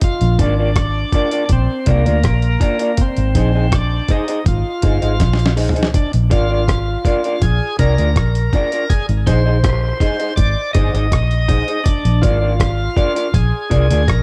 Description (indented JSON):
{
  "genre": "roots reggae",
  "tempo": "81 BPM",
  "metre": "4/4",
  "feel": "straight",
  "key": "Bb mixolydian",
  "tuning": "A4 = 441 Hz",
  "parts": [
    { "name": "bright tonewheel organ", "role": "melody", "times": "0.0-14.2 s", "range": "Bb3 to Eb5", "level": "-25 LUFS", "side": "equal", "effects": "overdrive, slow rotary speaker, tape echo" },
    { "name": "dusty soul sampler-style drum kit", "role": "drums", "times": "0.0-14.2 s", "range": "hi-hat, kick drum, rim click, snare drum, toms", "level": "-19 LUFS", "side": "equal", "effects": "none" },
    { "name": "vintage muted fingered electric bass", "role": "bass", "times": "0.2-14.2 s", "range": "G1 to D2", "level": "-18 LUFS", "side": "equal", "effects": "none" },
    { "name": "electric guitar through a small old amp", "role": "accompaniment", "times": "0.4-14.0 s", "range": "D4 to Eb5", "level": "-24 LUFS", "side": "equal", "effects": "tape echo" }
  ],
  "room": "light reverb",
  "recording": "dark, warm production",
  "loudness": "-16 LUFS",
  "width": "mono",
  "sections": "0.0-14.2 A section",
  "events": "drum fill 5.2-5.9",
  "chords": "0.0 Bb; 3.0 Ab; 5.9 Bb; 8.9 Ab; 11.9 Bb"
}